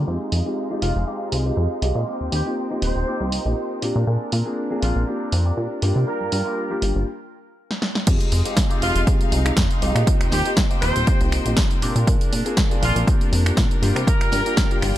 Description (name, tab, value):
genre	filtered disco house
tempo	120 BPM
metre	4/4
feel	swing 54% on 16ths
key	F dorian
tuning	A4 = 440 Hz
part	dark concert grand piano	accompaniment	0.0-15.0 s	G3 to Ab4	-26 LUFS	left 1 dB	phaser, sidechain pumping, low-pass filter
part	bright studio string section	sustained chords	0.0-15.0 s	Ab3 to G5	-31 LUFS	equal	sidechain pumping, low-pass filter
part	plucky analog bass	bass	0.0-14.9 s	Eb1 to C3	-21 LUFS	equal	sidechain pumping, low-pass filter
part	tambourine	percussion	0.1-7.0 s	none	barely audible	none	none
part	punchy analog drum machine	drums	0.3-14.9 s	crash cymbal, finger snaps, hi-hat, snare drum	-26 LUFS	right 1 dB	sidechain pumping on hats, low-pass filter on hats, low-pass filter on snare, sidechain pumping on cymbals, low-pass filter on cymbals, low-pass filter on room
part	clear horn section	melody	0.8-14.8 s	F4 to C5	-27 LUFS	right 1 dB	sidechain pumping, low-pass filter, ping-pong delay
part	electronic kick drum	drums	8.1-14.7 s	none	-20 LUFS	equal	overdrive
room	small room ambience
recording	dark, warm production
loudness	-18 LUFS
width	side -13 dB against mid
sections	0.0-8.1 A section; 8.1-15.0 B section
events	filter sweep 0.0-8.1; break 7.1-8.1; drum fill 7.7-8.1; drop 8.1-15.0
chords	0.1 Fm7; 2.1 Eb6; 3.8 Bb7; 5.8 Gm7; 8.1 Fm7; 10.1 Eb6; 11.8 Bb7; 13.8 Gm7